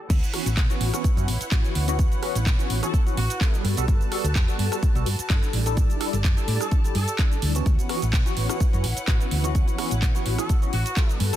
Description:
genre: filtered disco house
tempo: 127 BPM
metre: 4/4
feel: swing 54% on 16ths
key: D major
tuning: A4 = 440 Hz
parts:
  - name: muted studio string section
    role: sustained chords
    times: 0.0-11.4 s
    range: E4 to A5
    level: -36 LUFS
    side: equal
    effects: vintage 12-bit sampler grit, sidechain pumping, low-pass filter
  - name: hollow-body short-scale fingered electric bass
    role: bass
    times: 0.1-11.4 s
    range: G1 to B2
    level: -25 LUFS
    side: equal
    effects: sidechain pumping, low-pass filter
  - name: electronic kick drum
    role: drums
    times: 0.1-11.1 s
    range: none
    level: -22 LUFS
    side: equal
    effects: none
  - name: house drum kit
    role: drums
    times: 0.1-11.4 s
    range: cabasa, crash cymbal, handclaps, hi-hat, rim click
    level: -31 LUFS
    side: right 2 dB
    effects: sidechain pumping on hats, sidechain pumping on cymbals, sidechain pumping on perc
  - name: tine electric piano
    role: accompaniment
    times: 0.3-11.4 s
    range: E3 to A4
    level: -30 LUFS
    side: equal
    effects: overdrive, fast stereo tremolo, phaser, sidechain pumping, low-pass filter
  - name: mellow horn section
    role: melody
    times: 2.8-3.7, 6.6-7.3, 10.4-11.3 s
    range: F#4 to A4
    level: -36 LUFS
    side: right 1 dB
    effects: sidechain pumping, low-pass filter, dub echo
room: digital ambience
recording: dense, heavily limited modern master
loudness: -20 LUFS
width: side -12 dB against mid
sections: 0.1-11.4 A section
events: drop 0.1-11.4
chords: 0.1 Dmaj13 (rootless); 3.6 Gmaj9; 5.5 A7sus4; 7.7 Dmaj13 (rootless)

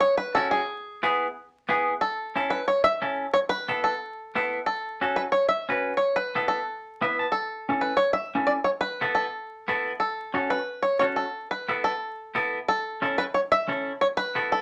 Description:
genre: latin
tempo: 180 BPM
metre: 4/4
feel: straight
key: A major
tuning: A4 = 439 Hz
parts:
  - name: bluegrass banjo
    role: melody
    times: 0.0-14.6 s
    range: G#4 to E5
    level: -27 LUFS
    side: equal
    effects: none
  - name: semi-hollow electric guitar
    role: accompaniment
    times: 0.4-14.6 s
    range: B3 to A5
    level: -28 LUFS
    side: equal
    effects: none
room: moderate club reverb, RT60 0.6 s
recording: vinyl crackle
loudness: -26 LUFS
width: mono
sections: 0.0-2.0 A section; 2.0-12.7 B section; 12.7-14.6 C section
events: clean electric guitar fill 6.9-7.4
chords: 0.0 C#m; 0.7 E; 2.0 A; 3.4 Esus4; 4.7 F#m; 6.0 Esus4; 7.4 A; 8.7 Esus4; 10.0 F#m; 11.3 Esus4; 12.7 A; 14.0 Esus4

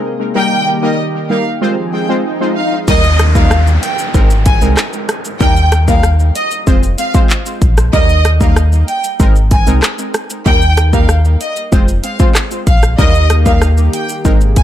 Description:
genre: dancehall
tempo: 95 BPM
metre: 4/4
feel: straight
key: Eb major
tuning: A4 = 440 Hz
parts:
  - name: warm analog pad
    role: sustained chords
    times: 0.0-2.9, 13.0-14.6 s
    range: C3 to Ab4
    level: -21 LUFS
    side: left 1 dB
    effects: chorus, sidechain pumping
  - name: rich studio violin section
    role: melody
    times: 0.4-14.6 s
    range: Eb5 to Ab5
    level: -18 LUFS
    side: equal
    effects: tape echo
  - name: synth brass stab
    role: accompaniment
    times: 0.4-14.4 s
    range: G3 to C5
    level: -18 LUFS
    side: equal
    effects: chorus, tape echo
  - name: swell and downlifter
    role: sound effects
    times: 1.8-7.9 s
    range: none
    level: -23 LUFS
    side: left 1 dB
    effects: none
  - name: sub bass with octave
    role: bass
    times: 2.9-14.6 s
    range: F1 to Eb2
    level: -12 LUFS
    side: equal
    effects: none
  - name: pop drum kit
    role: drums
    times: 2.9-14.6 s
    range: crash cymbal, handclaps, hi-hat, kick drum, rim click, shaker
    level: -12 LUFS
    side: equal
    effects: none
room: digital ambience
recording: echo-heavy mix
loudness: -10 LUFS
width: side -12 dB against mid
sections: 0.0-2.9 A section; 2.9-14.6 B section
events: swell 1.8-2.9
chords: 0.4 Eb; 1.6 Fm; 2.9 Eb; 4.1 Abadd9; 5.4 Eb; 6.7 Fm; 7.9 Eb; 9.2 Abadd9; 10.5 Eb; 11.7 Fm; 13.0 Eb

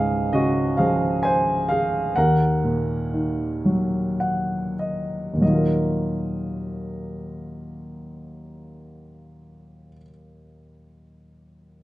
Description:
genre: classical, lyrical solo piano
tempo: 29-45 BPM (dotted quarters)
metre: 6/8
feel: rubato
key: Eb minor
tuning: A4 = 440 Hz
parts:
  - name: warm grand piano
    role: solo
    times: 0.0-11.8 s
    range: Db2 to Ab5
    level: -21 LUFS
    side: equal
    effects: none
room: moderate recital hall reverb, RT60 1.4 s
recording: dark, warm production, nothing above 10.8 kHz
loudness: -20 LUFS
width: side -16 dB against mid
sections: 0.0-5.4 A section; 5.4-9.3 B section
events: slowing down 0.0-5.4; grand piano fill 3.6-5.4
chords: 0.0 Db; 2.2 Ebm; 5.4 Ebmadd9

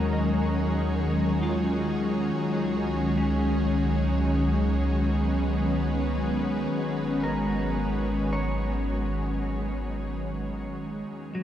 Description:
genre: ambient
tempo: 55 BPM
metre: 4/4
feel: straight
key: unclear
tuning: A4 = 439 Hz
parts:
  - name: ethereal airy pad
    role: sustained chords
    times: 0.0-11.4 s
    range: Eb3 to Bb4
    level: -26 LUFS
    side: equal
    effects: ensemble chorus, built-in reverb
  - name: clean electric guitar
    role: arpeggios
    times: 0.0-11.4 s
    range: Gb3 to Bb5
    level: -36 LUFS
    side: left 1 dB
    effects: diffuse ambient delay
  - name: warm sub bass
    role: bass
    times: 0.0-11.4 s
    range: Ab1 to Eb2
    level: -29 LUFS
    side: equal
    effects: none
room: wet huge ambient reverb, RT60 7.9 s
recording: dark, warm production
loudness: -24 LUFS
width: side -10 dB against mid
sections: 0.0-11.4 A section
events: fade-in on clean electric guitar 0.0-11.4; fade-out 8.2-11.4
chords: 0.0 Ebm7; 2.4 Dbsus4; 6.7 Abm

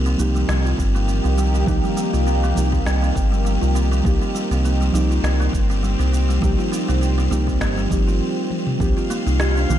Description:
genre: organic downtempo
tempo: 101 BPM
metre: 4/4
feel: swing 55% on 16ths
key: unclear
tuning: A4 = 439 Hz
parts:
  - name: muted felt-like synth keys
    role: accompaniment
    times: 0.0-9.8 s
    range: Eb3 to G4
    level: -26 LUFS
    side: right 3 dB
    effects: chorus, sidechain pumping, digital delay
  - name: bowed-like drone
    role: sustained chords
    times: 0.0-9.8 s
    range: Eb3 to G4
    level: -27 LUFS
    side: equal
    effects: built-in reverb, sidechain pumping
  - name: buzzing kalimba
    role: arpeggios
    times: 0.0-9.8 s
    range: G3 to G4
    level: -25 LUFS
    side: equal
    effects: digital delay
  - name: round analog bass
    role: bass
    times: 0.0-9.8 s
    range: G1 to C2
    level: -19 LUFS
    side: equal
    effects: sidechain pumping
  - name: organic electronic drum kit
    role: drums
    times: 0.1-9.8 s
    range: shaker, snare drum, toms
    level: -30 LUFS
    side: equal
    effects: none
  - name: electronic kick drum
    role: drums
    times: 0.8-8.9 s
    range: none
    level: -23 LUFS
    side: equal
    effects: overdrive
  - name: drifting glass-harmonics texture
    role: texture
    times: 9.0-9.8 s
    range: F4 to F5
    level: -31 LUFS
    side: left 2 dB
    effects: chorus, built-in reverb
room: light reverb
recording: dark, warm production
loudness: -17 LUFS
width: side -11 dB against mid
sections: 0.0-8.8 A section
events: break 8.2-8.8; drum fill 8.5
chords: 0.0 Eb; 8.8 Cm

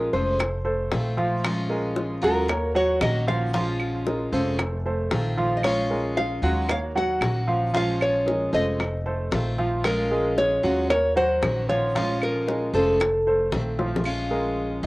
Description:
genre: latin, Cuban son and guajira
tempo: 114 BPM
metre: 4/4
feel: straight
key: Bb minor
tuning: A4 = 440 Hz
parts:
  - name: nylon-string guitar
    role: melody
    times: 0.0-13.5 s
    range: A4 to Gb5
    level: -24 LUFS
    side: equal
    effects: cassette tape
  - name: picked steel-string acoustic guitar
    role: accompaniment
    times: 0.0-14.9 s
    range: Eb3 to Gb4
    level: -29 LUFS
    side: left 1 dB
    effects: cassette tape
  - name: dark grand piano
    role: arpeggios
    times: 0.0-14.9 s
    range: F3 to Gb5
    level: -27 LUFS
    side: right 1 dB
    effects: cassette tape, analog delay
  - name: upright bass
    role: bass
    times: 0.0-14.9 s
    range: F1 to Eb2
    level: -29 LUFS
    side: equal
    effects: none
  - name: bongos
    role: percussion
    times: 0.1-14.1 s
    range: none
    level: -29 LUFS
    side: left 3 dB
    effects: none
  - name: claves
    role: percussion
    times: 0.4-14.3 s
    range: none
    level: -32 LUFS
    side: right 2 dB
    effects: none
room: moderate small room ambience, RT60 0.5 s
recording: home recording on cassette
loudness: -21 LUFS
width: side -20 dB against mid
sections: 0.0-14.1 A section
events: drum fill 13.8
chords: 0.4 F7; 1.4 Bbm7; 2.5 Ebm7; 3.5 Bbm7; 4.6 F7; 5.6 Bbm7; 6.7 Ebm7; 7.7 Bbm7; 8.8 F7; 9.8 Bbm7; 10.9 Ebm7; 11.9 Bbm7; 13.0 F7; 14.1 Bbm7

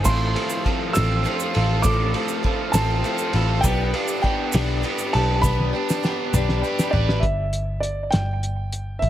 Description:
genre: folk rock and heartland rock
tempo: 67 BPM (dotted quarters)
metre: 6/8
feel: straight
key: unclear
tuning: A4 = 439 Hz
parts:
  - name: warm grand piano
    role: melody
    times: 0.0-9.1 s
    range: D5 to E6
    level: -27 LUFS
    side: right 2 dB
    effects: tape echo
  - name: clear upright piano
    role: accompaniment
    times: 0.0-7.2 s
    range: G4 to B5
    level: -34 LUFS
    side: right 5 dB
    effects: tape echo
  - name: picked steel-string acoustic guitar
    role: accompaniment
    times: 0.0-7.2 s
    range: A3 to B4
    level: -29 LUFS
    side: left 6 dB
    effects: tape echo
  - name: bright tonewheel organ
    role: sustained chords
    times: 0.0-7.2 s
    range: D4 to C5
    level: -36 LUFS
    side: right 1 dB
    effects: none
  - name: vintage muted picked electric bass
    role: bass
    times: 0.0-9.1 s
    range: G1 to B1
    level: -22 LUFS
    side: equal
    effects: none
  - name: tube shaker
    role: percussion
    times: 0.0-6.9 s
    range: none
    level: -33 LUFS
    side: right 6 dB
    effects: none
  - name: crunchy overdriven guitar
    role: riff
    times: 0.1-7.2 s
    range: A2 to B4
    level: -27 LUFS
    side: right 2 dB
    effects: none
  - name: cloth-damped thuddy drum kit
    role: drums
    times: 0.1-9.1 s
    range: crash cymbal, hi-hat, kick drum, ride cymbal, snare drum, toms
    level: -25 LUFS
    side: equal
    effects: none
room: light reverb, small room ambience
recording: echo-heavy mix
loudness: -19 LUFS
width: side -12 dB against mid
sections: 0.0-7.2 A section; 7.2-9.1 B section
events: drum fill 5.4-7.2; upright piano fill 6.3-7.2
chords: 0.1 F/A; 3.6 G/B; 7.2 Em/G

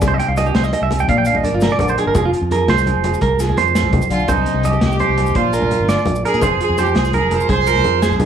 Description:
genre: highlife guitar band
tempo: 112 BPM (dotted quarters)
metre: 12/8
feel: straight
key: unclear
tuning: A4 = 440 Hz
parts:
  - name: nylon-string guitar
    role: accompaniment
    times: 0.0-8.3 s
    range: Bb2 to Bb4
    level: -23 LUFS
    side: left 6 dB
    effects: none
  - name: fingered electric bass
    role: bass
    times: 0.0-8.3 s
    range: F1 to Bb2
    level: -20 LUFS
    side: equal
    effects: none
  - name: vintage drum kit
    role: drums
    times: 0.0-8.3 s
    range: hi-hat, kick drum, snare drum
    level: -23 LUFS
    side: equal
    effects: none
  - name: agogo bells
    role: percussion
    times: 0.0-8.2 s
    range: none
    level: -29 LUFS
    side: right 5 dB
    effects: none
  - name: congas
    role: percussion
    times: 0.0-8.3 s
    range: none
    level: -24 LUFS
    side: left 2 dB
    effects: none
  - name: maracas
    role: percussion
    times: 0.0-8.2 s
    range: none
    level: -37 LUFS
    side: left 6 dB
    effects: none
  - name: clean electric guitar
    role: arpeggios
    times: 0.1-8.3 s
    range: F4 to G5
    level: -19 LUFS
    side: right 7 dB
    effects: spring reverb, slapback echo
  - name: warm horn section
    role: melody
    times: 4.1-8.2 s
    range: Eb4 to C5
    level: -20 LUFS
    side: right 2 dB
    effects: none
room: little or no reverb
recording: small room ambience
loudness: -14 LUFS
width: side -8 dB against mid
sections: 0.0-4.3 A section; 4.3-8.3 B section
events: clean electric guitar solo 0.0-4.3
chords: 0.0 Cm; 1.1 Bb; 2.2 Fm; 4.3 Cm; 5.4 Bb; 6.4 Fm

